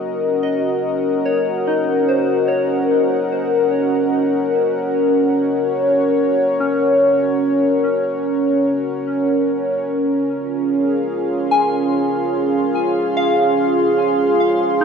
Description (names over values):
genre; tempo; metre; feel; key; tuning
ambient; 73 BPM; 4/4; straight; unclear; A4 = 440 Hz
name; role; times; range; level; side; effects
warm analog pad; sustained chords; 0.0-14.8 s; Db4 to C6; -16 LUFS; equal; chorus
soft synth bell; arpeggios; 0.4-14.8 s; Db4 to Ab5; -24 LUFS; left 3 dB; chorus, phaser, tape echo
room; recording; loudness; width
wet spring reverb, RT60 2.2 s; echo-heavy mix; -15 LUFS; side -6 dB against mid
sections
0.0-14.8 A section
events
fade-in on synth bell 0.0-14.8; filter sweep on analog synth pad 0.0-14.8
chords
0.0 Ebm7; 9.9 Dbmaj7